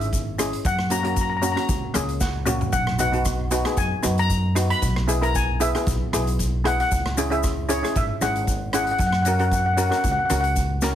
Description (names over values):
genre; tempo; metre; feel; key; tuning
calypso; 115 BPM; 4/4; swing 54% on 16ths; unclear; A4 = 440 Hz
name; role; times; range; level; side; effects
steel pan; melody; 0.0-10.5 s; C#5 to B5; -25 LUFS; left 2 dB; none
steel pan; accompaniment; 0.0-10.9 s; A#3 to F#5; -26 LUFS; equal; none
upright bass; bass; 0.0-10.9 s; G#1 to F#2; -25 LUFS; equal; none
street-band drum kit; drums; 0.0-10.9 s; hi-hat, kick drum, rim click, snare drum, toms; -28 LUFS; equal; none
egg shaker; percussion; 0.0-10.9 s; none; -33 LUFS; left 6 dB; none
room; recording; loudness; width
light reverb; heavily compressed radio sound, multiband compression; -20 LUFS; side -10 dB against mid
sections
0.0-10.9 A section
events
steel pan fill 2.0-2.7; drum fill 2.2-2.7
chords
0.0 C#m; 0.6 F#; 2.7 B; 4.8 E/B; 6.9 C#m; 9.0 F#